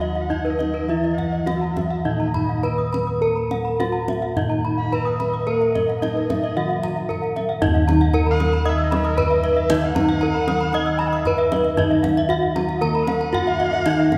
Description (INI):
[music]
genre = Balinese gamelan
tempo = 103-115 BPM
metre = 4/4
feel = straight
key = Eb pelog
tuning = A4 = 443 Hz
[part]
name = gamelan-type bronze metallophone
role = melody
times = 0.0-14.2 s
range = Eb4 to Eb5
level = -25 LUFS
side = equal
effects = none
[part]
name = warm erhu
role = second line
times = 0.0-14.2 s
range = Bb4-40c to Cb6-36c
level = -33 LUFS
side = equal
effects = none
[part]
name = gamelan-type bronze metallophone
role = accompaniment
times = 0.0-14.2 s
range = Eb3 to Eb4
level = -32 LUFS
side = equal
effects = none
[part]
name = gamelan-type bronze metallophone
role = arpeggios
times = 0.0-14.0 s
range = Cb5-40c to Eb6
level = -30 LUFS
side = equal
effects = none
[part]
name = gamelan-type bossed gongs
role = bass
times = 0.0-14.2 s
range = Eb2 to Bb4-45c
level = -26 LUFS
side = equal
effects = none
[part]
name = gamelan-type bronze metallophone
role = arpeggios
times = 0.2-14.2 s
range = Cb5-40c to Fb6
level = -32 LUFS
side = equal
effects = none
[part]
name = kendang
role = percussion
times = 0.3-14.2 s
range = none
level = -32 LUFS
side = equal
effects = none
[sound]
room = wet concert hall reverb, RT60 2.2 s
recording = recorded in a church or concert hall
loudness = -21 LUFS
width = mono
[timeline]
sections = 0.0-7.6 A section; 7.6-14.2 B section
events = none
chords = none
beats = 0.30 | 0.89 1.47 2.05 2.63 | 3.22 3.80 4.37 4.93 | 5.48 6.03 6.57 7.09 | 7.62 8.14 8.66 9.18 | 9.70 10.22 10.74 11.26 | 11.78 12.30 12.82 13.34 | 13.86